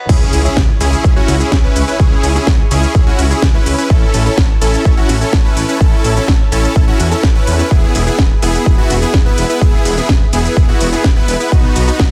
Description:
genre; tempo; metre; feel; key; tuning
EDM, festival progressive house; 126 BPM; 4/4; straight; C# minor; A4 = 440 Hz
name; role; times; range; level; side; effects
lush unison pad; sustained chords; 0.8-12.1 s; E4 to B5; -28 LUFS; equal; none
supersaw chords; riff; 0.1-12.0 s; B3 to B4; -19 LUFS; equal; sidechain pumping, digital delay
detuned saw bass; bass; 0.1-12.1 s; E1 to E2; -19 LUFS; equal; sidechain pumping
electronic kick drum; drums; 0.1-12.1 s; none; -14 LUFS; equal; high-pass filter on kick
house drum kit; drums; 0.1-12.1 s; crash cymbal, hi-hat, ride cymbal, shaker, snare drum; -23 LUFS; equal; none
impact; sound effects; 0.2-2.0 s; none; -27 LUFS; equal; none
room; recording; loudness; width
little or no reverb; dense, heavily limited modern master, high-pass filter; -12 LUFS; mono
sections
0.1-12.1 A section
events
drop 0.1-12.1; impact 0.1-2.0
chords
0.1 C#m; 3.9 A; 7.7 E; 11.5 B

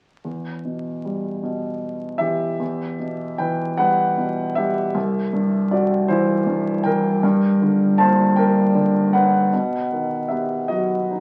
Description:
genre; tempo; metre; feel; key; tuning
classical, lyrical solo piano; 52 BPM (dotted quarters); 6/8; rubato; E minor; A4 = 441 Hz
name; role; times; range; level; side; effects
warm grand piano; solo; 0.2-11.2 s; C2 to A5; -20 LUFS; equal; none
room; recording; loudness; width
wet small room ambience, RT60 0.5 s; very old 78 rpm record, vinyl crackle; -20 LUFS; mono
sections
0.2-2.6 A section; 2.6-11.2 B section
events
none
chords
0.2 Em; 5.0 C; 7.2 Gm; 9.5 B

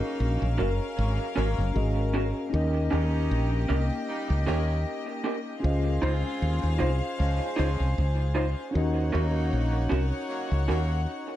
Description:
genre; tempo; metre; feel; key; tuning
reggae; 77 BPM; 4/4; swing 54% on 16ths; unclear; A4 = 441 Hz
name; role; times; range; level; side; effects
clear saxophone section; second line; 0.0-11.0 s; F3 to G4; -38 LUFS; right 1 dB; none
warm studio string section; second line; 0.0-11.4 s; Bb3 to Gb5; -34 LUFS; left 2 dB; tape echo
mellow tine electric piano; accompaniment; 0.0-11.4 s; Db4 to Eb5; -33 LUFS; left 1 dB; medium stereo tremolo, tape echo
woody fretless electric bass; bass; 0.2-11.1 s; Gb1 to Eb2; -25 LUFS; equal; none
electric guitar through a small old amp; stabs; 0.6-10.8 s; Db4 to C5; -34 LUFS; right 2 dB; tremolo, tape echo
room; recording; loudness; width
studio ambience; dark, warm production; -24 LUFS; side -13 dB against mid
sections
0.0-11.4 A section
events
none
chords
0.0 Ab9sus4; 2.5 Eb7; 5.6 Dbmaj9; 8.7 Ebm7

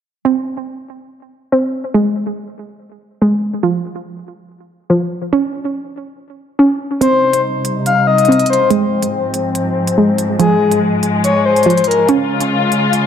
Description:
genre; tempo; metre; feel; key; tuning
hip hop, drill; 142 BPM; 4/4; half-time; C phrygian; A4 = 444 Hz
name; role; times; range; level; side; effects
warbly dusty pluck; arpeggios; 0.2-13.1 s; F3 to Db4; -15 LUFS; right 2 dB; chorus, low-pass filter, digital delay
breathy flute-like synth lead; second line; 7.0-12.1 s; Ab4 to F5; -15 LUFS; left 4 dB; chorus, digital delay
muted studio string section; sustained chords; 7.0-13.1 s; Ab2 to F4; -16 LUFS; left 2 dB; low-pass filter
electronic hi-hat; drums; 7.0-13.0 s; none; -24 LUFS; right 4 dB; none
room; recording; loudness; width
wet recital hall reverb, RT60 1.7 s, digital ambience; none; -12 LUFS; side -8 dB against mid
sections
0.3-7.0 A section; 7.0-13.1 B section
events
filter sweep 7.0-13.1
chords
0.3 N.C.; 7.0 Cm; 8.7 Ab6; 10.4 Fm; 12.1 Db

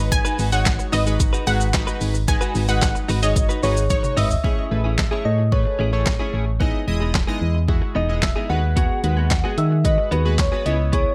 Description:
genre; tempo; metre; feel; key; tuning
dance-pop; 111 BPM; 4/4; straight; unclear; A4 = 440 Hz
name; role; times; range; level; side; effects
chorused retro synth keys; accompaniment; 0.0-11.1 s; G#3 to D#5; -31 LUFS; equal; sidechain pumping
direct-recorded clean electric guitar; riff; 0.0-11.1 s; B3 to B4; -31 LUFS; equal; analog chorus
solid FM bass; bass; 0.0-11.1 s; E1 to D#3; -23 LUFS; equal; sidechain pumping
analog pluck; melody; 0.1-4.3 s; C#5 to G#5; -28 LUFS; equal; chorus, sidechain pumping
deep house drum kit; drums; 0.1-11.1 s; handclaps, hi-hat, kick drum, shaker, snare drum, toms; -24 LUFS; equal; none
soft struck synth lead; melody; 3.6-11.1 s; B4 to F#5; -28 LUFS; equal; chorus, phaser
room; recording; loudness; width
little or no reverb; none; -20 LUFS; mono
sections
0.0-4.4 A section; 4.4-11.1 B section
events
drop 0.0-4.4; drum fill 3.9-4.4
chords
0.0 G#m7; 4.4 Amaj7; 6.6 Emaj7; 8.5 G#m7/D#

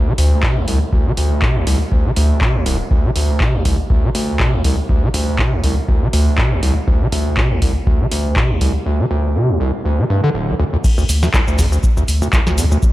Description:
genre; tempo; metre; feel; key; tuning
acid house; 121 BPM; 4/4; swing 55% on 16ths; unclear; A4 = 440 Hz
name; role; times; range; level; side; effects
overdriven acid bass; riff; 0.0-12.8 s; D1 to D3; -17 LUFS; equal; distortion, wide subtle chorus, sidechain pumping, tape echo
warm sub bass; bass; 0.2-12.7 s; D1 to D2; -18 LUFS; equal; sidechain pumping
booming analog drum machine; drums; 0.2-12.9 s; crash cymbal, handclaps, hi-hat, shaker, snare drum; -23 LUFS; equal; studio reverb
electronic kick drum; drums; 0.4-12.9 s; none; -17 LUFS; equal; studio reverb
room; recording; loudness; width
light reverb; none; -14 LUFS; side -16 dB against mid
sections
0.0-10.8 A section; 10.8-12.9 B section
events
drop 10.8-12.9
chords
0.0 D7(no3); 10.8 N.C.

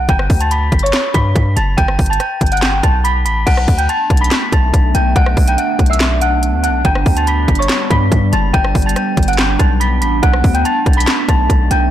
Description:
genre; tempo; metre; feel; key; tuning
hip hop, trap; 142 BPM; 4/4; half-time; B minor; A4 = 439 Hz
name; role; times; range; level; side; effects
dark detuned synth bell; melody; 0.0-11.9 s; C#5 to B6; -17 LUFS; equal; chorus, phaser, low-pass filter, ping-pong delay
hard-hitting 808-style bass; bass; 0.0-11.9 s; F#1 to G2; -15 LUFS; equal; none
trap drum kit; drums; 0.1-11.8 s; crash cymbal, handclaps, hi-hat, kick drum, rim click, snare drum; -15 LUFS; equal; none
dark analog pad; sustained chords; 3.8-11.9 s; G3 to D4; -21 LUFS; right 1 dB; chorus, phaser
room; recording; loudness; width
digital ambience; blown-out, overdriven recording, overdrive; -11 LUFS; side -11 dB against mid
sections
0.0-3.5 A section; 3.5-11.9 B section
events
none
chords
0.1 G; 3.5 Bm7; 6.8 G; 10.2 Bm7

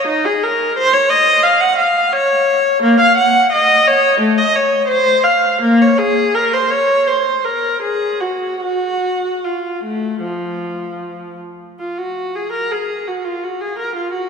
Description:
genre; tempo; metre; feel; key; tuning
classical, baroque-style suite movement for unaccompanied viola; 72-90 BPM; 4/4; rubato; unclear; A4 = 440 Hz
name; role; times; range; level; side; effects
rich viola; solo; 0.0-14.3 s; F3 to Gb5; -13 LUFS; equal; none
room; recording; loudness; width
wet church reverb, RT60 3.4 s; none; -13 LUFS; side -6 dB against mid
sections
0.0-11.8 A section; 11.8-14.3 A section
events
none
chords
none

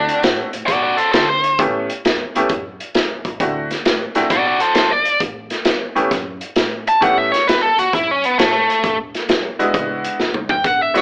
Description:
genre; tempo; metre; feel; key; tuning
electric blues shuffle; 133 BPM; 4/4; swing 67% on 8ths; unclear; A4 = 442 Hz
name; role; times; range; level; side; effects
biting lead guitar; melody; 0.0-1.6, 4.3-11.0 s; A3 to A5; -14 LUFS; equal; overdrive
bright upright piano; accompaniment; 0.0-11.0 s; G#3 to G4; -18 LUFS; equal; none
upright bass; bass; 0.0-10.9 s; E1 to D3; -33 LUFS; equal; none
crunchy breakbeat drum kit; drums; 0.1-11.0 s; hi-hat, kick drum, snare drum, toms; -19 LUFS; equal; none
room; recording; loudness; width
light reverb; band playing live in one room, AM radio sound; -14 LUFS; side -38 dB against mid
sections
0.0-11.0 A section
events
lead electric guitar solo 0.0-11.0; drum fill 10.2-10.6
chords
0.0 D9; 1.6 A9; 3.4 D9; 5.2 A5; 8.8 E9

